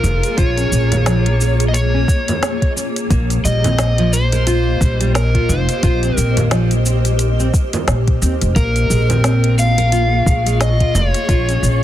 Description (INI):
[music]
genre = organic downtempo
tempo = 88 BPM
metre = 4/4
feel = swing 58% on 16ths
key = Bb dorian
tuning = A4 = 439 Hz
[part]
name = overdriven slide guitar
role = melody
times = 0.0-11.8 s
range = Bb4 to F5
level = -22 LUFS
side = left 2 dB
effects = tape echo
[part]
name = granular cloud pad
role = sustained chords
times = 0.0-11.8 s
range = Bb3 to Db6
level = -24 LUFS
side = right 1 dB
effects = built-in reverb, sidechain pumping
[part]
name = nylon-string guitar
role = arpeggios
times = 0.0-11.8 s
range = F3 to Bb4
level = -23 LUFS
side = equal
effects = low-pass filter, tape echo
[part]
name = upright bass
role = bass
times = 0.0-11.8 s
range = F1 to Eb2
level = -16 LUFS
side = equal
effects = sidechain pumping
[part]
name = organic electronic drum kit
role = drums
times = 0.0-11.8 s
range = hi-hat, shaker, snare drum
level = -23 LUFS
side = equal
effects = none
[part]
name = frame drum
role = percussion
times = 0.0-11.1 s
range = none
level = -23 LUFS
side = right 3 dB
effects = none
[part]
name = electronic kick drum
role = drums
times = 0.4-11.4 s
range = none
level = -16 LUFS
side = equal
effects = none
[sound]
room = little or no reverb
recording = dense, heavily limited modern master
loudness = -13 LUFS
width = side -12 dB against mid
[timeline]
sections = 0.0-11.8 A section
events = none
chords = 0.0 Bbm7; 3.1 Cm; 8.6 Bbm7